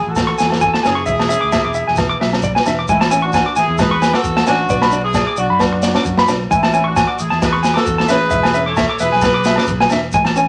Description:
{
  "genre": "highlife guitar band",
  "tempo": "132 BPM",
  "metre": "4/4",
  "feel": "straight",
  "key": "A major",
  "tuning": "A4 = 440 Hz",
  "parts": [
    { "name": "clear horn section", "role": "melody", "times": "0.0-9.9 s", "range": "C#4 to C#5", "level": "-22 LUFS", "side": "equal", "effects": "none" },
    { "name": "fingered electric bass", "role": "bass", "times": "0.1-10.5 s", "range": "E1 to F#2", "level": "-25 LUFS", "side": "equal", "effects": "none" },
    { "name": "flamenco guitar", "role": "accompaniment", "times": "0.2-10.5 s", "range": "G#3 to D4", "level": "-26 LUFS", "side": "equal", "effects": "none" },
    { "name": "crunchy breakbeat drum kit", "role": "drums", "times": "0.2-10.4 s", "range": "kick drum, snare drum", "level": "-22 LUFS", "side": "equal", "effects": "none" },
    { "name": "agogo bells", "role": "percussion", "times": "0.2-10.4 s", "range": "none", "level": "-28 LUFS", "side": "equal", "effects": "none" },
    { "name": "shekere", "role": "percussion", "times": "0.2-10.5 s", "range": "none", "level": "-32 LUFS", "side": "equal", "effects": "none" },
    { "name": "clean electric guitar", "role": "arpeggios", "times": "0.3-10.4 s", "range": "D5 to D6", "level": "-20 LUFS", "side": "equal", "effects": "none" }
  ],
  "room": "moderate studio reverb, RT60 0.5 s",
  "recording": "none",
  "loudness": "-15 LUFS",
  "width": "mono",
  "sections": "0.0-2.9 A section; 2.9-10.5 B section",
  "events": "none",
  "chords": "0.0 Amaj7; 1.1 E7; 2.9 Amaj7; 4.7 Bmadd9; 6.5 Amaj7; 8.3 E7",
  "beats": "0.17 0.62 | 1.08 1.53 1.98 2.44 | 2.89 3.34 3.79 4.25 | 4.70 5.15 5.61 6.06 | 6.51 6.96 7.42 7.87 | 8.32 8.78 9.23 9.68 | 10.14"
}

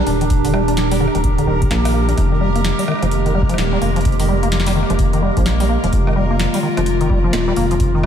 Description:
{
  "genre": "IDM",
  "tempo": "128 BPM",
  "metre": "4/4",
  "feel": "swing 62% on 16ths",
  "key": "F dorian",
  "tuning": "A4 = 440 Hz",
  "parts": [
    { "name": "warbly tape-like pad", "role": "sustained chords", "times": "0.0-8.1 s", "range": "Eb3 to G4", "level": "-20 LUFS", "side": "equal", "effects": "chorus, built-in reverb, vintage 12-bit sampler grit" },
    { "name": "deep acid bass", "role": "arpeggios", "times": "0.0-8.1 s", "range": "D3 to D4", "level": "-22 LUFS", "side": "left 1 dB", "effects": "analog delay" },
    { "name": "bubbling stepped-filter texture", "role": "texture", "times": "0.0-8.1 s", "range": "Bb4", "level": "-28 LUFS", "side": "right 1 dB", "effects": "chorus, built-in reverb, sidechain pumping" },
    { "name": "rubbery square bass", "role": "bass", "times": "0.1-8.1 s", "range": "Eb1 to Bb1", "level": "-19 LUFS", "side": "equal", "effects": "none" },
    { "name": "booming analog drum machine", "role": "drums", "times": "0.1-8.1 s", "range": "hi-hat, rim click, snare drum", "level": "-26 LUFS", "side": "equal", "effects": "diffuse ambient delay" },
    { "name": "electronic kick drum", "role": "drums", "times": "0.3-7.9 s", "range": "none", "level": "-19 LUFS", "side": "equal", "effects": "none" }
  ],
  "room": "moderate church reverb, RT60 2.8 s",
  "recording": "dreamy mix soaked in reverb",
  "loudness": "-14 LUFS",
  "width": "side -8 dB against mid",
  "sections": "0.0-8.1 A section",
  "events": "none",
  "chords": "0.0 Ebmaj7; 2.2 Fm11",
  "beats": "| 0.30 0.77 1.24 1.71 | 2.18 2.65 3.11 3.58 | 4.05 4.52 4.99 5.46 | 5.93 6.39 6.86 7.33 | 7.80"
}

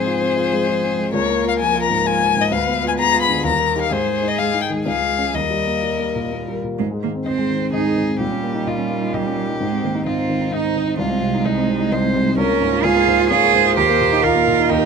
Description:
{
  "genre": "quick classical-period movement for piano quartet",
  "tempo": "129 BPM",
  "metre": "3/4",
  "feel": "straight",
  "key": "Ab major",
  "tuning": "A4 = 441 Hz",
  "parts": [
    { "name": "warm violin", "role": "melody", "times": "0.0-14.9 s", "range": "G4 to B5", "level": "-20 LUFS", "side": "left 8 dB", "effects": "none" },
    { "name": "rich cello", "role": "second line", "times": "0.0-14.9 s", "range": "F3 to Ab4", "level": "-21 LUFS", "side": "right 12 dB", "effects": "none" },
    { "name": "rich violin", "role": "second line", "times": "0.0-14.9 s", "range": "Eb4 to C5", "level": "-26 LUFS", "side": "left 3 dB", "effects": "none" },
    { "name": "warm grand piano", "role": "accompaniment", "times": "0.0-14.9 s", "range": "C2 to Ab4", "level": "-21 LUFS", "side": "left 1 dB", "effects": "none" }
  ],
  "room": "light reverb",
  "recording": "close, detailed microphones",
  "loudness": "-16 LUFS",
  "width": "side -6 dB against mid",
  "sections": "0.0-6.8 A section; 6.8-14.9 B section",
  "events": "none",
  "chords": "0.0 Fm/Ab; 1.1 Bbm7/Db; 2.5 Ddim7; 3.5 Eb; 3.9 Ab5; 4.9 Db; 5.3 Eb; 6.8 Ab; 8.2 Eb7/Bb; 9.6 Ab; 11.0 Ab/C; 12.4 Bbm7/Db; 13.8 Eb",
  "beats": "0.21 0.67 | 1.13 1.59 2.05 | 2.52 2.98 3.45 | 3.92 4.38 4.86 | 5.35 5.83 6.31 | 6.79 7.26 7.73 | 8.20 8.67 9.14 | 9.61 10.07 10.53 | 10.99 11.46 11.92 | 12.38 12.84 13.30 | 13.77 14.23 14.70"
}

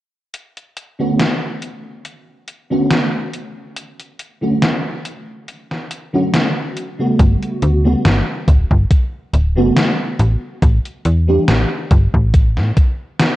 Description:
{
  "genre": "vaporwave",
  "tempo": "70 BPM",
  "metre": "4/4",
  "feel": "swing 54% on 16ths",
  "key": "D major",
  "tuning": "A4 = 440 Hz",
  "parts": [
    { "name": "gated 80s digital drum machine", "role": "drums", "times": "0.3-13.4 s", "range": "hi-hat, snare drum", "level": "-18 LUFS", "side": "equal", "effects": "gated reverb, gated reverb snare, overdrive, vintage 12-bit sampler grit" },
    { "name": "FM electric piano with soft pad layer", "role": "accompaniment", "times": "1.0-11.5 s", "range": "C#3 to G4", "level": "-18 LUFS", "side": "right 1 dB", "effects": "ensemble chorus, tape echo" },
    { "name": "slap-like FM bass", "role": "bass", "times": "7.2-12.7 s", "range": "D1 to A2", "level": "-14 LUFS", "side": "equal", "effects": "none" },
    { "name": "electronic kick drum", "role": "drums", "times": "7.2-12.9 s", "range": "none", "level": "-13 LUFS", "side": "equal", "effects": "overdrive, vintage 12-bit sampler grit" }
  ],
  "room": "light reverb",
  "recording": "cassette tape",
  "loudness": "-13 LUFS",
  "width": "side -16 dB against mid",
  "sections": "0.3-13.4 A section",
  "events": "none",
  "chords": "0.3 Bm9; 3.3 Dmaj7; 7.2 Gmaj9#11; 10.2 A7(no3)",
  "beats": "| 0.34 1.20 2.05 2.91 | 3.77 4.62 5.48 6.34 | 7.20 8.05 8.91 9.77 | 10.62 11.48 12.34 13.20"
}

